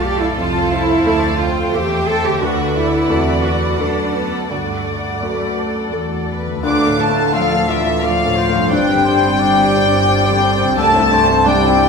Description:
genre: cinematic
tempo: 87 BPM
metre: 3/4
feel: rubato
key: unclear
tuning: A4 = 440 Hz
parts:
  - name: warm symphonic violin section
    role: melody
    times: 0.0-11.9 s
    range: F#4 to D6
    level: -20 LUFS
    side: left 4 dB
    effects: none
  - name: warm symphonic violin section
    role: second line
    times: 0.0-11.9 s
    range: E4 to A5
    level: -24 LUFS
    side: left 2 dB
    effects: none
  - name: clear grand piano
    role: accompaniment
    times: 0.0-11.9 s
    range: C2 to A4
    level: -21 LUFS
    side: left 2 dB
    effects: none
  - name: dark symphonic viola section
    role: accompaniment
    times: 0.0-11.9 s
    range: F3 to D5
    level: -24 LUFS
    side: right 2 dB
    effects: none
  - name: concert harp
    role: arpeggios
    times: 0.0-11.9 s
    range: G2 to A4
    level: -26 LUFS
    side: left 4 dB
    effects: none
  - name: dark symphonic double bass section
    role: bass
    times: 0.0-11.9 s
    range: G1 to G2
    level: -24 LUFS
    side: right 2 dB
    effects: none
  - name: warm symphonic cello section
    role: bass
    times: 0.0-11.9 s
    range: E3 to A4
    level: -21 LUFS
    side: right 3 dB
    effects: none
  - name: mellow flute section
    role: second line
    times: 6.6-11.9 s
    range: E5 to D6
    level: -20 LUFS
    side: right 1 dB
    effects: none
  - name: warm oboe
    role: second line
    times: 6.6-11.9 s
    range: A4 to E5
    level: -23 LUFS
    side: right 1 dB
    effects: none
  - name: mellow French horn section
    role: sustained chords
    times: 6.6-11.9 s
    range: E3 to D4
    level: -21 LUFS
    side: left 1 dB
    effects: none
room: wet scoring stage reverb, RT60 1.5 s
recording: minimal, uncompressed stereo recording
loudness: -13 LUFS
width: side -5 dB against mid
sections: 0.0-6.6 A section; 6.6-11.9 B section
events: none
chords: 0.0 F; 2.4 D; 6.6 Dm; 8.7 Gsus4; 10.8 Cadd9

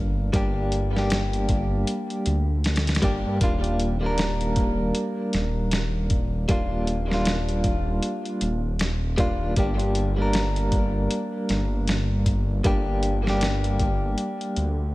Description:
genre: trip hop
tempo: 78 BPM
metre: 4/4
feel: swing 60% on 16ths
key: G minor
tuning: A4 = 439 Hz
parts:
  - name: direct-recorded clean electric guitar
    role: accompaniment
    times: 0.0-14.8 s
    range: G3 to Bb4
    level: -26 LUFS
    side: equal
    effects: tremolo, vintage 12-bit sampler grit, tape echo
  - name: dark detuned saw bass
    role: bass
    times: 0.0-14.9 s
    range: Eb1 to G2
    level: -25 LUFS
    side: equal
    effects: none
  - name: dusty soul sampler-style drum kit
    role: drums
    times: 0.3-14.8 s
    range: hi-hat, kick drum, snare drum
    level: -26 LUFS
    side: equal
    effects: vintage 12-bit sampler grit
room: little or no reverb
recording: echo-heavy mix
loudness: -22 LUFS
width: side -18 dB against mid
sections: 0.0-14.9 A section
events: fade-out 13.7-14.9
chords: 0.0 Gm; 3.4 Ebmaj7; 9.6 Gm

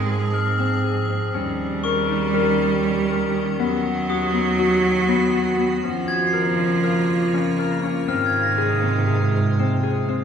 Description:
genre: contemporary instrumental, chamber music in an uneven meter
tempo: 240 BPM (eighths)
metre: 9/8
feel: straight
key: unclear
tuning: A4 = 440 Hz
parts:
  - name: bright cello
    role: second line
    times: 0.0-10.0 s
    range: Eb3 to Ab3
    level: -24 LUFS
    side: right 4 dB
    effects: none
  - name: icy glass pad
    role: sustained chords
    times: 0.0-10.2 s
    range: C3 to Ab4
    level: -27 LUFS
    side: right 1 dB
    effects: chorus, built-in reverb
  - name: Celtic harp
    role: arpeggios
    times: 0.0-10.2 s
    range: Cb4 to Bb4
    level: -23 LUFS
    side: left 6 dB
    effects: none
  - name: dark double bass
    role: bass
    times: 0.0-10.2 s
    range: Eb2 to Ab2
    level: -26 LUFS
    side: right 3 dB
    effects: none
  - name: glockenspiel with hard plastic mallets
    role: texture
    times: 0.3-10.2 s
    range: Db6 to C7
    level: -27 LUFS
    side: left 1 dB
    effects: none
room: wet recital hall reverb, RT60 1.4 s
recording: heard from further back in the room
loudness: -18 LUFS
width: side -7 dB against mid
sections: 0.0-10.2 A section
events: none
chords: 0.0 Ab6; 1.3 Eb7; 3.6 Cb/Eb; 5.8 Db6/F; 8.1 Ab6

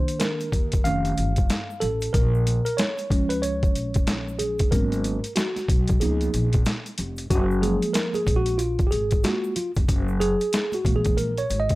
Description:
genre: hip hop, jazz-hop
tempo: 93 BPM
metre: 4/4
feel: swing 61% on 16ths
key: F# major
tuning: A4 = 441 Hz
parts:
  - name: mellow tine electric piano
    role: accompaniment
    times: 0.0-11.8 s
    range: Eb3 to F5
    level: -25 LUFS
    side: right 1 dB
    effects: medium stereo tremolo
  - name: boom bap sampler-style drum kit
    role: drums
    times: 0.1-11.8 s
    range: hi-hat, kick drum, snare drum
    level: -24 LUFS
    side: equal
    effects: overdrive
  - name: egg shaker and congas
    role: percussion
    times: 0.1-11.8 s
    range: none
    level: -40 LUFS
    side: left 1 dB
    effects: none
  - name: upright bass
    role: bass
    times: 0.5-11.8 s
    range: F1 to Eb2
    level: -26 LUFS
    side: equal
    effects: tube saturation
room: small room ambience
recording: dry, gritty hardware recording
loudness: -21 LUFS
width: side -19 dB against mid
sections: 0.0-7.3 A section; 7.3-11.8 B section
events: tine electric piano solo 0.0-7.3, 7.3-11.8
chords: 0.0 Cm7; 0.9 F7b13; 2.1 A#m7; 4.7 G#m11; 6.0 C#13; 7.3 F#maj7; 9.9 F#9

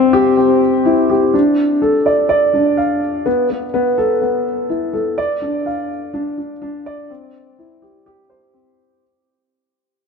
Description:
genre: electronica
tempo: 125 BPM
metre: 4/4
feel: straight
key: D dorian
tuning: A4 = 440 Hz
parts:
  - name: dark concert grand piano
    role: solo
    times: 0.0-9.0 s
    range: B3 to F5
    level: -14 LUFS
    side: left 1 dB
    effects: none
room: wet huge ambient reverb, RT60 4.4 s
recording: none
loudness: -14 LUFS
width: side -5 dB against mid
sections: 0.0-1.3 A section; 1.3-9.0 B section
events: drop 0.0-1.3; fade-out 1.3-9.0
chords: none

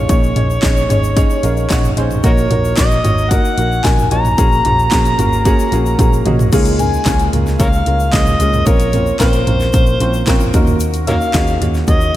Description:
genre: piano-driven pop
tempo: 112 BPM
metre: 4/4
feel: straight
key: unclear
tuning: A4 = 440 Hz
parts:
  - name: overdriven harmonica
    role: melody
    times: 0.0-12.2 s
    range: Gb4 to Bb5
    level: -19 LUFS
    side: left 1 dB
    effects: slapback echo
  - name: warm upright piano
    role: accompaniment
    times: 0.0-12.2 s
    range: Ab2 to Bb5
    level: -18 LUFS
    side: right 1 dB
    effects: slapback echo
  - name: vintage muted picked electric bass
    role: bass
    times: 0.0-12.1 s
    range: Ab1 to Eb2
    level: -17 LUFS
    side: equal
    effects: none
  - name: house drum kit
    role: drums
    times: 0.1-12.0 s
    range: crash cymbal, handclaps, hi-hat, kick drum, snare drum, toms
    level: -16 LUFS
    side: equal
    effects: overdrive
  - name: tube shaker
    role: percussion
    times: 0.1-12.1 s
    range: none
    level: -33 LUFS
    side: left 10 dB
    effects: none
room: moderate concert hall reverb, RT60 1.9 s, studio reverb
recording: big arena sound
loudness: -11 LUFS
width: side -14 dB against mid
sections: 0.0-6.5 A section; 6.5-12.2 B section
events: upright piano fill 1.2-2.2, 5.7-6.5; drum fill 6.0-6.5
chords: 0.1 Absus4; 2.2 Ebm; 6.5 Db6; 8.7 Bbmadd9; 10.5 Ebm7

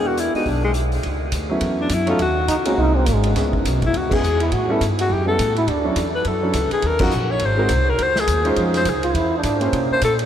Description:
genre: jazz, small-group swing and bop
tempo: 207 BPM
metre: 4/4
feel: swing 60% on 8ths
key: unclear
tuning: A4 = 440 Hz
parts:
  - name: breathy alto saxophone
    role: melody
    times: 0.0-10.1 s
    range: G#3 to C#5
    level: -22 LUFS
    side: left 2 dB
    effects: none
  - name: warm grand piano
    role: accompaniment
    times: 0.0-10.0 s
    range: F#3 to B#4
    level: -24 LUFS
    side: right 1 dB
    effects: none
  - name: upright bass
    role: bass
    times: 0.0-10.3 s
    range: G#1 to C3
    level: -22 LUFS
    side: equal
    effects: none
  - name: vintage drum kit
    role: drums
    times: 0.2-10.2 s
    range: crash cymbal, hi-hat, kick drum, ride cymbal, snare drum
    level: -28 LUFS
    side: equal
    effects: none
  - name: breathy trombone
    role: second line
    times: 2.5-6.1, 9.0-9.8 s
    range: G#3 to F#4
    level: -25 LUFS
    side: right 2 dB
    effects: none
room: wet huge ambient reverb, RT60 8.3 s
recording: in a vast, echoing space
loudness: -17 LUFS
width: side -10 dB against mid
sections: 0.0-1.0 A section; 1.0-10.3 B section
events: band accent 4.1, 7.0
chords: 0.0 E7; 1.0 A6; 2.2 D#m7; 2.8 G#7; 3.4 C#m7; 4.5 A7; 5.7 Dmaj7; 6.8 D#m7; 7.4 G#7; 8.0 C#maj7; 9.1 E; 9.7 C7b9

